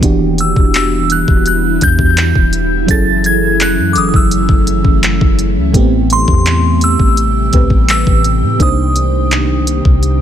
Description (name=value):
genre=contemporary R&B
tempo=84 BPM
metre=4/4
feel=straight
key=E minor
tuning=A4 = 441 Hz
part: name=mellow FM electric piano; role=accompaniment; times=0.0-10.2 s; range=A2 to C5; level=-17 LUFS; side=right 2 dB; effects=chorus
part: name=ethereal airy pad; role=sustained chords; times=0.0-10.2 s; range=C3 to G4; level=-18 LUFS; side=equal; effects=ensemble chorus, built-in reverb
part: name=soft 808-style bass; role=bass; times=0.0-10.2 s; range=E1 to A2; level=-15 LUFS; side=equal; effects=none
part: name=smooth R&B drum kit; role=drums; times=0.0-10.2 s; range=handclaps, hi-hat, kick drum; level=-13 LUFS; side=equal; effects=none
part: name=glassy synth bell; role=melody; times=0.4-10.2 s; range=C6 to A6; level=-17 LUFS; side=equal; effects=chorus
room=little or no reverb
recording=none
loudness=-9 LUFS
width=side -10 dB against mid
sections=0.0-10.2 A section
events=drum fill 10.0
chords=0.0 Em9; 2.9 F#m9; 5.7 Am9; 8.6 Cm9